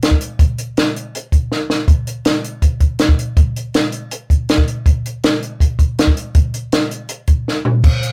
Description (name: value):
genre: rock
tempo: 161 BPM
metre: 4/4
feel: straight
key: none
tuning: none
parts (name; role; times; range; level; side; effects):
- compact cocktail drum kit; drums; 0.0-8.1 s; crash cymbal, hi-hat, kick drum, snare drum, toms; -16 LUFS; equal; none
room: light reverb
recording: rough rehearsal-room recording, warm saturation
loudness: -16 LUFS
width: mono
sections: 0.0-7.8 A section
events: drum fill 1.5-1.9, 7.5-7.8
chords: none